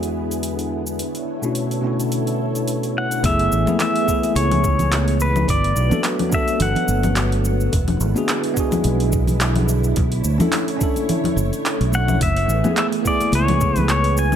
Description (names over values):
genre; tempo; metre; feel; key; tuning
sunset chillout; 107 BPM; 4/4; swing 55% on 16ths; F# minor; A4 = 440 Hz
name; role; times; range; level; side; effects
bell-like tine electric piano; accompaniment; 0.0-14.4 s; E2 to A4; -24 LUFS; equal; auto-pan, digital delay
soft string machine; sustained chords; 0.0-14.4 s; D3 to C#5; -26 LUFS; right 1 dB; ensemble chorus
deep house drum kit; drums; 0.0-14.4 s; congas, handclaps, hi-hat, shaker; -25 LUFS; left 2 dB; overdrive, small room reverb
pedal steel guitar; melody; 3.0-7.1, 11.9-14.4 s; B4 to G#5; -22 LUFS; left 2 dB; digital delay
fingered electric bass; bass; 3.2-14.4 s; E1 to D2; -19 LUFS; equal; none
electronic kick drum; drums; 3.2-13.7 s; none; -23 LUFS; equal; small room reverb
bongos and congas; percussion; 3.2-13.9 s; none; -26 LUFS; right 2 dB; none
room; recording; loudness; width
light reverb; none; -17 LUFS; side -9 dB against mid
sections
0.0-3.2 A section; 3.2-14.4 B section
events
none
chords
0.0 E7; 1.0 Bm11; 3.2 F#m11 (rootless); 5.5 Gmaj9; 7.7 E7; 10.0 Bm11; 12.2 F#m11 (rootless)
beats
0.43 | 1.00 1.56 2.12 2.68 | 3.24 3.80 4.36 4.92 | 5.48 6.04 6.60 7.16 | 7.72 8.29 8.85 9.41 | 9.97 10.53 11.09 11.65 | 12.21 12.77 13.33 13.89